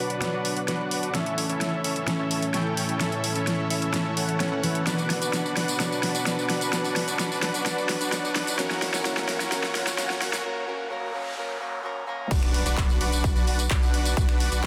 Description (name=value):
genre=EDM, festival progressive house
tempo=129 BPM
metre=4/4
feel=straight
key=B minor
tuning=A4 = 440 Hz
part: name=fingerpicked plugged-in steel-string acoustic guitar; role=accompaniment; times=0.0-12.3 s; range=E3 to B4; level=-34 LUFS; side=equal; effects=sidechain pumping, tape echo
part: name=dark chamber string section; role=sustained chords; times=0.0-10.4 s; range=F#2 to B4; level=-36 LUFS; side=equal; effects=sidechain pumping
part: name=dense compressed supersaw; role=riff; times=0.0-14.7 s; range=C#4 to G5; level=-32 LUFS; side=equal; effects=sidechain pumping, low-pass filter, tape echo
part: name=riser, noise sweep and impact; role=sound effects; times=4.6-14.2 s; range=none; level=-42 LUFS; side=equal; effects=none
part: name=big-room dance drum kit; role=drums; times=0.1-14.7 s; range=crash cymbal, finger snaps, handclaps, hi-hat, snare drum, tambourine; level=-31 LUFS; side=equal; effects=overdrive
part: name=saturated sub bass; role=bass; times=12.3-14.7 s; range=B1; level=-29 LUFS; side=equal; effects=sidechain pumping
part: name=electronic kick drum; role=drums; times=12.3-14.7 s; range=none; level=-26 LUFS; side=equal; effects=overdrive
room=moderate huge ambient reverb, RT60 5.2 s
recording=dense, heavily limited modern master, high-pass filter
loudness=-26 LUFS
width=mono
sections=0.0-12.3 A section; 12.3-14.7 B section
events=build-up 0.0-12.3; drum fill 0.0-10.4; filter sweep on supersaw synth 0.0-12.3; break 10.4-12.3; noise sweep 10.4-12.3; drop 12.3-14.7; impact 12.3-14.2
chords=0.0 Bm; 1.1 A; 4.9 Bm; 8.6 F#; 12.3 Bm